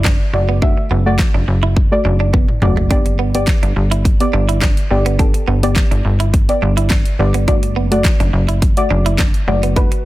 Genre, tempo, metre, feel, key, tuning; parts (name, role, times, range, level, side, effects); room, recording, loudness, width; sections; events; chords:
dance-pop; 105 BPM; 4/4; straight; A4 = 440 Hz
deep mellow chord stab; accompaniment; 0.0-10.1 s; A3 to E5; -20 LUFS; left 1 dB; chorus, sidechain pumping
direct-recorded clean electric guitar; riff; 0.0-9.9 s; A3 to E4; -24 LUFS; right 7 dB; wide subtle chorus
plucky analog bass; bass; 0.0-9.9 s; F#1 to G1; -16 LUFS; equal; sidechain pumping
pop drum kit; drums; 0.0-10.0 s; handclaps, hi-hat, kick drum, snare drum, toms; -15 LUFS; equal
little or no reverb; dense, heavily limited modern master; -12 LUFS; side -17 dB against mid
0.0-10.1 A section
drum fill 2.3-2.9
0.0 D/F#